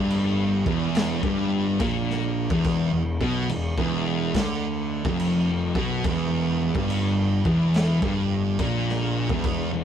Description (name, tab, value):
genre	stoner and doom metal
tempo	71 BPM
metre	4/4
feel	swing 66% on 8ths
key	E minor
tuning	A4 = 440 Hz
part	thick fuzz guitar	riff	0.0-9.8 s	E2 to D3	-26 LUFS	left 6 dB	distortion
part	thick fuzz guitar	riff	0.0-9.8 s	E2 to D3	-26 LUFS	right 5 dB	distortion
part	fuzz fingered electric bass	bass	0.0-9.8 s	E1 to D2	-31 LUFS	equal	overdrive, tube saturation
part	raw garage drum kit	drums	0.1-9.7 s	crash cymbal, kick drum, snare drum	-29 LUFS	equal	none
room	light reverb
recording	rough rehearsal-room recording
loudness	-21 LUFS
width	side -9 dB against mid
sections	0.0-9.8 A section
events	none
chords	0.0 Em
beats	0.11 0.95 1.80 | 2.65 3.50 4.35 5.20 | 6.04 6.89 7.74 8.59 | 9.44